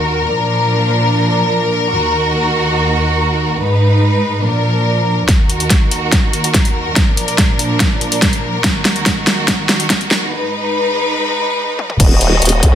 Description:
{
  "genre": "heavy wobble dubstep",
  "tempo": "143 BPM",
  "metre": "4/4",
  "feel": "half-time",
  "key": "Eb harmonic minor",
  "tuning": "A4 = 439 Hz",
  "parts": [
    { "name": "rich symphonic string section", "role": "sustained chords", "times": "0.0-12.8 s", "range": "Eb2 to Eb5", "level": "-14 LUFS", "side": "equal", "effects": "sidechain pumping, low-pass filter" },
    { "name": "dubstep drum kit", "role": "drums", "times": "5.3-12.7 s", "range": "crash cymbal, hi-hat, snare drum, toms", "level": "-15 LUFS", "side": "equal", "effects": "none" },
    { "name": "electronic kick drum", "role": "drums", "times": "5.3-12.7 s", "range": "none", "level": "-14 LUFS", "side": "equal", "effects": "none" },
    { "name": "formant-sweep wobble bass", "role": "bass", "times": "12.0-12.8 s", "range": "Eb1 to Db2", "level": "-13 LUFS", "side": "equal", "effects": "chorus, overdrive" }
  ],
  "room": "light reverb, digital ambience",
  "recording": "dense, heavily limited modern master, high-pass filter",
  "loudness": "-12 LUFS",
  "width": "side -10 dB against mid",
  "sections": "0.0-5.3 A section; 5.3-12.0 B section",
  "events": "build-up 5.3-12.0; drum fill 5.3-10.3, 11.8; break 10.3-12.0",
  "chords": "0.2 Bb; 1.9 Ebm; 3.6 Abm; 4.4 Bb; 5.3 Ebm; 7.0 Bb; 8.6 Ebm; 10.3 Abm; 12.0 Ebm"
}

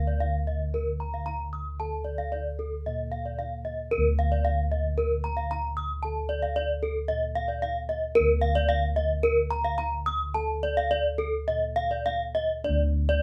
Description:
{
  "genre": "Balinese gamelan",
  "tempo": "101-113 BPM",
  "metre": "4/4",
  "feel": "straight",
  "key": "D pelog",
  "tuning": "A4 = 440 Hz",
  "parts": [
    { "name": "gamelan-type bronze metallophone", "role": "arpeggios", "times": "0.0-13.2 s", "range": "A4 to Eb6+35c", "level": "-29 LUFS", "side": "equal", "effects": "none" },
    { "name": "gamelan-type bossed gongs", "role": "bass", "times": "0.0-13.2 s", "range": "D2 to Bb4", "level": "-32 LUFS", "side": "equal", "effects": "none" }
  ],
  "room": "moderate small room reverb, RT60 0.5 s",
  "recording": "band playing live in one room",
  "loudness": "-28 LUFS",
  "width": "mono",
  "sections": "0.0-12.7 A section",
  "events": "none",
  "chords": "none"
}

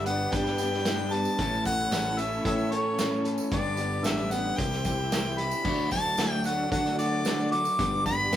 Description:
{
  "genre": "folk rock and heartland rock",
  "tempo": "112 BPM",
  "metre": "4/4",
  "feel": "straight",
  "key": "unclear",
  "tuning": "A4 = 443 Hz",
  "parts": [
    { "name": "clear harmonica", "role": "melody", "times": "0.0-8.4 s", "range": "C#5 to D6", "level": "-29 LUFS", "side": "left 1 dB", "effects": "none" },
    { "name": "picked plugged-in steel-string acoustic guitar", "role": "accompaniment", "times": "0.0-8.4 s", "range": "G2 to A4", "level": "-34 LUFS", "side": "left 3 dB", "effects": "none" },
    { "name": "warm studio string section", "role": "sustained chords", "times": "0.0-8.4 s", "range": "B3 to D5", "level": "-37 LUFS", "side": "right 1 dB", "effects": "none" },
    { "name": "electric guitar through a small old amp", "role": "riff", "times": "0.0-8.4 s", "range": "G2 to A4", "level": "-33 LUFS", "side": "right 1 dB", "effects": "spring reverb" },
    { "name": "picked electric bass", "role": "bass", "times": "0.0-8.4 s", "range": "G1 to D3", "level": "-33 LUFS", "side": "equal", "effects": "none" },
    { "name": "vintage drum kit", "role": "drums", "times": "0.1-8.4 s", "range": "crash cymbal, hi-hat, kick drum, snare drum", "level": "-32 LUFS", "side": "right 1 dB", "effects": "none" },
    { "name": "tambourine", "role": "percussion", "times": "0.1-8.4 s", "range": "none", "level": "-45 LUFS", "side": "right 7 dB", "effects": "none" }
  ],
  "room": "moderate studio reverb, RT60 0.6 s",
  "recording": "rough rehearsal-room recording",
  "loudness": "-25 LUFS",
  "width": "side -11 dB against mid",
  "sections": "0.0-8.4 A section",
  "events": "none",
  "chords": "0.0 G; 1.4 A; 3.5 G; 4.6 C; 5.7 D; 7.8 G"
}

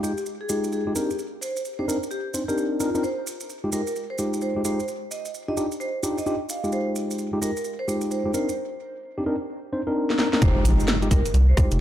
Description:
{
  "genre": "UK garage, two-step garage",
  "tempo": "130 BPM",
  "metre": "4/4",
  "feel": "swing 62% on 16ths",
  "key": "F dorian",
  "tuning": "A4 = 440 Hz",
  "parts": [
    { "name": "vibraphone with medium mallets", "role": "melody", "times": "0.0-11.6 s", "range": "F4 to F5", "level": "-31 LUFS", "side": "right 1 dB", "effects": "tape echo" },
    { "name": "mellow tine electric piano", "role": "stabs", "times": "0.0-11.8 s", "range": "Ab3 to C5", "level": "-26 LUFS", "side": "equal", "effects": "dub echo" },
    { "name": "maracas", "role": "percussion", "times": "0.0-11.8 s", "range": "none", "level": "-35 LUFS", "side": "right 4 dB", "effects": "none" },
    { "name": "garage drum kit", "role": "drums", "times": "10.1-11.8 s", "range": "hi-hat, rim click, snare drum", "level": "-26 LUFS", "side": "left 1 dB", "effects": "analog delay" },
    { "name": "rubbery square bass", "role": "bass", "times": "10.4-11.8 s", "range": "F1 to C2", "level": "-18 LUFS", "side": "equal", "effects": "tube saturation" },
    { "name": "electronic kick drum", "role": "drums", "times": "10.4-11.7 s", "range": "none", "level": "-20 LUFS", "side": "equal", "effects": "none" },
    { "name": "impact", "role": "sound effects", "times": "10.4-11.8 s", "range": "none", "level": "-26 LUFS", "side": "equal", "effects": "none" }
  ],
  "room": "light reverb",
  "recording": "echo-heavy mix",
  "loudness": "-22 LUFS",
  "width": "side -12 dB against mid",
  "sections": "0.0-10.4 A section; 10.4-11.8 B section",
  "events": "drum fill 10.1-10.4; drop 10.4-11.8; impact 10.4-11.8",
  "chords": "0.0 Fm9; 1.0 Cm9; 3.0 Fm9; 4.9 Ebmaj9; 6.5 Fm9; 8.3 Cm9; 10.4 Fm9"
}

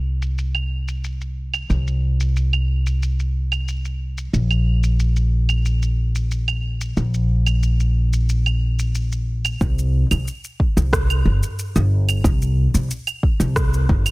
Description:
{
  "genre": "sunset chillout",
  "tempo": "91 BPM",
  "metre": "4/4",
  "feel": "straight",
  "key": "unclear",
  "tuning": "A4 = 439 Hz",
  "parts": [
    { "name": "upright bass", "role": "bass", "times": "0.0-14.0 s", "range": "G1 to C2", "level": "-18 LUFS", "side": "equal", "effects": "none" },
    { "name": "electronic shaker, claves and rim click", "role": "drums", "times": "0.2-14.1 s", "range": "none", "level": "-26 LUFS", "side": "right 3 dB", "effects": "low-pass filter on perc, soft clipping on snare, low-pass filter on snare" },
    { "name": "electronic kick drum", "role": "drums", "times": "9.6-14.0 s", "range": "none", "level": "-19 LUFS", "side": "equal", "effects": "none" }
  ],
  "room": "little or no reverb",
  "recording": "dense, heavily limited modern master",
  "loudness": "-18 LUFS",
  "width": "side -22 dB against mid",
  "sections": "0.0-9.6 A section; 9.6-14.1 B section",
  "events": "none",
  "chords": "none"
}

